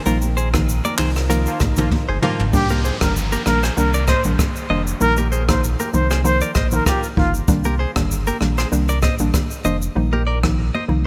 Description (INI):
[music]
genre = afrobeats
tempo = 97 BPM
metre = 4/4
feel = swing 55% on 16ths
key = unclear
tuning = A4 = 440 Hz
[part]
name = deep dark ambient pad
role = sustained chords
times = 0.0-2.5 s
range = F3 to Bb4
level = -36 LUFS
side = equal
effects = none
[part]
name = hollow square pluck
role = accompaniment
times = 0.1-11.1 s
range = Eb3 to Eb4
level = -26 LUFS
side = equal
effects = chorus
[part]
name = direct-recorded clean electric guitar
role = riff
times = 0.1-10.8 s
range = F4 to Eb5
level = -29 LUFS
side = equal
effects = subtle chorus, delay
[part]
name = sub bass with octave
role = bass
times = 0.1-11.1 s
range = F1 to C2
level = -23 LUFS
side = equal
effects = none
[part]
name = jazz brush drum kit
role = drums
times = 0.1-10.6 s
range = handclaps, hi-hat, kick drum, rim click, shaker, toms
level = -24 LUFS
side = equal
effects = gated reverb
[part]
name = congas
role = percussion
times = 0.1-11.0 s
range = none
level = -32 LUFS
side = equal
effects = none
[part]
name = clear horn section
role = second line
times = 1.5-2.4 s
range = F3 to F4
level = -30 LUFS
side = equal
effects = delay
[part]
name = mellow trumpet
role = melody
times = 2.5-7.3 s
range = F4 to C5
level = -26 LUFS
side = equal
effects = delay
[part]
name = downlifter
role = sound effects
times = 2.5-7.5 s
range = none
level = -35 LUFS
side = equal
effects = none
[sound]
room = light reverb, studio ambience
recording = bright 1980s-style digital production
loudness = -19 LUFS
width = mono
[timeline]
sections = 0.0-2.5 A section; 2.5-11.1 B section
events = band accent 0.1-2.5; drum fill 1.9-2.5; hi-hats muted 10.0-11.1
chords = 0.1 Bbsus4; 2.5 Cm7; 5.0 Bbsus4; 7.5 Cm7; 10.0 Bbsus4